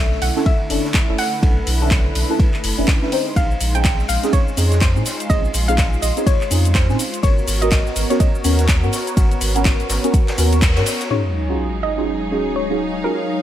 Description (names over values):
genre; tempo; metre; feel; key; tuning
deep house; 124 BPM; 4/4; swing 60% on 16ths; Eb minor; A4 = 440 Hz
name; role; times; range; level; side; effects
soft round pluck; melody; 0.0-13.4 s; Bb4 to G5; -25 LUFS; equal; chorus, tape echo
warm analog pad; sustained chords; 0.0-13.4 s; D3 to Db6; -27 LUFS; equal; chorus, vintage 12-bit sampler grit, sidechain pumping
deep mellow chord stab; stabs; 0.0-13.2 s; Cb4 to C5; -23 LUFS; right 1 dB; chorus, phaser, sidechain pumping, tape echo
warm sub bass; bass; 0.0-10.8 s; F#1 to Bb2; -19 LUFS; equal; sidechain pumping
raw garage drum kit; drums; 0.1-11.1 s; ride cymbal, snare drum; -33 LUFS; equal; high-pass filter on cymbals, studio reverb, high-pass filter on snare, high-pass filter on room
deep house drum kit; drums; 0.2-11.1 s; handclaps, hi-hat, shaker; -24 LUFS; left 1 dB; studio reverb
electronic kick drum; drums; 0.5-10.7 s; none; -17 LUFS; equal; studio reverb
sub drop; sound effects; 11.1-13.0 s; none; -26 LUFS; equal; none
clear symphonic string section; texture; 11.1-13.4 s; Eb4 to F5; -28 LUFS; right 1 dB; sidechain pumping
room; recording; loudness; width
light reverb, small room ambience; none; -15 LUFS; side -12 dB against mid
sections
0.0-11.1 A section; 11.1-13.4 B section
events
band accent 10.6; impact 11.1-13.0; filter sweep on analog synth pad 11.1-13.4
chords
0.0 Bm11; 3.1 Bbm11; 7.2 Abm11; 11.1 Ebm11